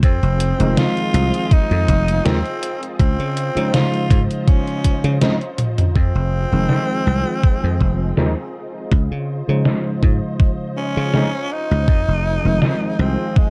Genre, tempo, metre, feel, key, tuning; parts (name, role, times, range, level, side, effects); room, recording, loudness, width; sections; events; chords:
vaporwave; 81 BPM; 4/4; swing 53% on 16ths; A4 = 445 Hz
growling tenor saxophone; melody; 0.0-13.5 s; Ab3 to F4; -26 LUFS; equal; analog delay
soft string machine; sustained chords; 0.0-13.5 s; C4 to Eb5; -33 LUFS; equal; ensemble chorus
dry thumbed slap bass; bass; 0.0-13.4 s; F1 to Db3; -21 LUFS; equal
detuned 8-bit digital drum machine; drums; 0.0-12.8 s; hi-hat, snare drum, toms; -22 LUFS; equal; overdrive, low-pass filter on hats, low-pass filter on snare, low-pass filter on toms, low-pass filter on room
electronic kick drum; drums; 0.0-13.5 s; -17 LUFS; equal; overdrive
tine electric piano; accompaniment; 0.6-13.5 s; Db3 to C5; -25 LUFS; equal; ensemble chorus
little or no reverb; dark, warm production; -18 LUFS; mono
0.0-6.0 A section; 6.0-13.5 B section
drum fill 5.6-6.0
0.0 Fm7; 3.0 Dbmaj9; 6.0 Fm7; 8.9 Dbmaj9; 11.9 Fm7